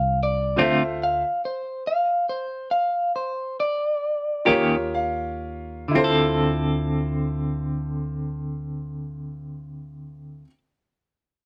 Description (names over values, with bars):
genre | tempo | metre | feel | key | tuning
slow blues | 39-50 BPM (dotted quarters) | 12/8 | straight | D minor | A4 = 441 Hz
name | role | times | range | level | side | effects
electric guitar at the edge of break-up | melody | 0.0-4.5 s | C5 to F5 | -26 LUFS | equal | slapback echo
clear grand piano | accompaniment | 0.0-10.5 s | E4 to E6 | -27 LUFS | equal | none
upright bass | bass | 0.0-10.4 s | C2 to Eb2 | -33 LUFS | equal | none
clean electric guitar | accompaniment | 0.6-10.6 s | D3 to A4 | -26 LUFS | equal | tremolo
room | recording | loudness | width
little or no reverb | recorded outdoors, with no room sound | -24 LUFS | mono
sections
0.0-5.9 A section; 5.9-11.5 B section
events
slowing down 0.0-5.9; clean electric guitar solo 0.0-5.9; grand piano fill 4.5-5.9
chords
0.0 Dm7; 4.5 Eb7; 5.9 Dm7